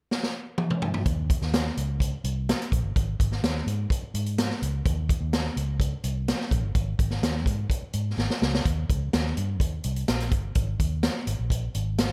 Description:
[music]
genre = uptempo 1960s-style soul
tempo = 126 BPM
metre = 4/4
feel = straight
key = Ab major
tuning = A4 = 440 Hz
[part]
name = swinging big-band drum kit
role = drums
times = 0.1-12.1 s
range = hi-hat, kick drum, snare drum, toms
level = -28 LUFS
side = equal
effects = none
[part]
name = vintage muted fingered electric bass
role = bass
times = 1.1-12.1 s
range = G1 to Ab2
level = -30 LUFS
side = equal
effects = none
[sound]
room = light reverb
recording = none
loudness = -27 LUFS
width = mono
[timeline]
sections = 0.0-1.1 A section; 1.1-8.7 B section; 8.7-12.1 C section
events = drum fill 0.1-1.1, 8.2-8.7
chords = none

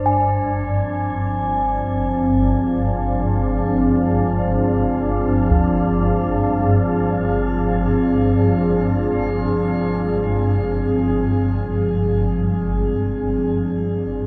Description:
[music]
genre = dark ambient drone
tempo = free time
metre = none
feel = none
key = unclear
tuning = A4 = 440 Hz
[part]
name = deep dark ambient pad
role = sustained chords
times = 0.8-14.3 s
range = F3 to F5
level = -22 LUFS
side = equal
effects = chorus, built-in reverb, shimmer reverb
[part]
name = swarming drone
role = drone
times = 0.0-14.3 s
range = G1 to G2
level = -23 LUFS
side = equal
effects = built-in reverb
[part]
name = bronze singing bowl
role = texture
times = 0.0-14.3 s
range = Ab5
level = -29 LUFS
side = equal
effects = shimmer reverb
[part]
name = taiko ensemble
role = percussion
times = 5.5-5.7 s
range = none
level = -22 LUFS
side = equal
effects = low-pass filter on perc
[sound]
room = wet lush hall reverb, RT60 2.6 s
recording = dreamy mix soaked in reverb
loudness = -19 LUFS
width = mono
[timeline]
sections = 0.0-14.3 A section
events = fade-in on synth drone 0.0-14.3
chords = 0.0 Fm/G

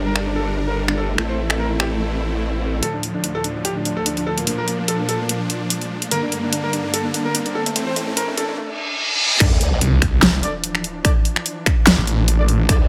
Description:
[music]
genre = heavy wobble dubstep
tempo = 146 BPM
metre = 4/4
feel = swing 54% on 16ths, half-time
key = D minor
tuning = A4 = 442 Hz
[part]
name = clear baby grand piano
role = melody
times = 0.0-8.7 s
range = A3 to C5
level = -27 LUFS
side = equal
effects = delay
[part]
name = supersaw chords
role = sustained chords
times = 0.0-12.9 s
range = D2 to Bb4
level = -28 LUFS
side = equal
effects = sidechain pumping, low-pass filter
[part]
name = formant-sweep wobble bass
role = bass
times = 0.0-2.8, 9.4-12.9 s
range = G1 to D2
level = -24 LUFS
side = equal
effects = chorus, overdrive
[part]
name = dubstep drum kit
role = drums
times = 0.2-12.8 s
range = crash cymbal, finger snaps, hi-hat, snare drum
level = -21 LUFS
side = equal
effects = none
[part]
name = riser, reverse cymbal and sub drop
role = sound effects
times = 5.9-11.0 s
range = none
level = -27 LUFS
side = equal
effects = none
[part]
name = warm brass ensemble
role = stabs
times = 9.4-12.8 s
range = D4 to D5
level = -32 LUFS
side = equal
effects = delay
[part]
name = electronic kick drum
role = drums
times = 9.4-12.8 s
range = none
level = -19 LUFS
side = equal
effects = distortion
[part]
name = snarling distorted saw bass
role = bass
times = 9.8-12.7 s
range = A1 to C2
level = -19 LUFS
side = equal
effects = distortion, overdrive
[sound]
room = light reverb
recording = high-pass filter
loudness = -20 LUFS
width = mono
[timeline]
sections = 0.0-2.8 A section; 2.8-9.4 B section; 9.4-12.9 C section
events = build-up 2.8-9.4; filter sweep 2.8-9.4; reverse cymbal 8.6-9.4; drop 9.4-12.9; impact 9.4-11.0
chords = 0.0 Gm; 1.2 Am; 2.8 Dm; 4.5 Bb; 6.1 Gm; 7.8 Am; 9.4 Dmadd9

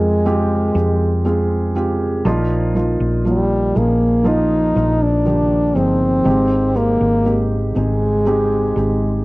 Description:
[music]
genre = pop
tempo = 60 BPM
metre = 4/4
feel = straight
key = unclear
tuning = A4 = 440 Hz
[part]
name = clear French horn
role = melody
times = 0.0-9.2 s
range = G3 to Eb4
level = -18 LUFS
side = equal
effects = cassette tape
[part]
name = felt-muted upright piano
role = accompaniment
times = 0.0-9.2 s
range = Ab2 to Bb4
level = -19 LUFS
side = right 1 dB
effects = cassette tape
[part]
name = hollow-body short-scale fingered electric bass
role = bass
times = 0.0-9.2 s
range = G1 to F2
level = -20 LUFS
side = equal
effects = none
[sound]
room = moderate spring reverb, RT60 1.4 s, small room ambience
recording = home recording on cassette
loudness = -14 LUFS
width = side -21 dB against mid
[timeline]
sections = 0.0-9.2 A section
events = none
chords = 0.0 Fmadd9; 2.3 Bbsus4; 6.3 Abmaj7

